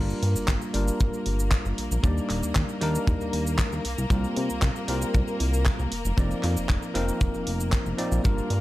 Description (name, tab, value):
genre	nu-disco, nu disco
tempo	116 BPM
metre	4/4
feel	straight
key	unclear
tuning	A4 = 440 Hz
part	bell-like tine electric piano	accompaniment	0.0-8.6 s	F3 to D5	-30 LUFS	equal	sidechain pumping, tape echo
part	clear symphonic string section	sustained chords	0.0-8.6 s	Bb3 to Bb4	-36 LUFS	left 3 dB	sidechain pumping
part	chorused synth bass	bass	0.0-8.6 s	Eb1 to C3	-27 LUFS	equal	tube saturation, sidechain pumping
part	house drum kit	drums	0.1-8.6 s	cabasa, handclaps, hi-hat	-34 LUFS	equal	none
part	kick drum	drums	0.5-8.4 s	none	-24 LUFS	equal	none
room	small room reverb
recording	dry, gritty hardware recording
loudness	-23 LUFS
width	side -16 dB against mid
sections	0.0-8.6 A section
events	none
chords	0.0 Gm7; 2.0 Ebmaj7; 3.9 C7sus4; 5.9 F7sus4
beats	0.49 1.00 1.52 | 2.04 2.56 3.07 3.59 | 4.11 4.63 5.14 5.66 | 6.18 6.70 7.21 7.73 | 8.25